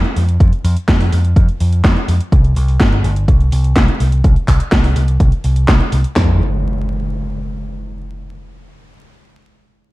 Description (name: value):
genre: italo disco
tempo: 125 BPM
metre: 4/4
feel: straight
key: unclear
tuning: A4 = 439 Hz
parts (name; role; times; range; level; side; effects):
- picked electric bass; bass; 0.0-6.4 s; G1 to F2; -14 LUFS; equal; tube saturation
- house drum kit; drums; 0.0-6.1 s; handclaps, hi-hat, snare drum; -18 LUFS; equal; gated reverb
- house drum kit; drums; 0.4-6.3 s; handclaps, kick drum, snare drum; -13 LUFS; equal; none
- impact; sound effects; 6.2-8.1 s; none; -20 LUFS; equal; none
room: little or no reverb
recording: vinyl crackle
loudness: -11 LUFS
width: side -19 dB against mid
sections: 0.0-6.2 A section; 6.2-8.1 B section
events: none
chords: none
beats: | 0.40 0.88 1.36 1.84 | 2.32 2.80 3.28 3.76 | 4.24 4.72 5.20 5.68 | 6.16 6.64 7.12 7.60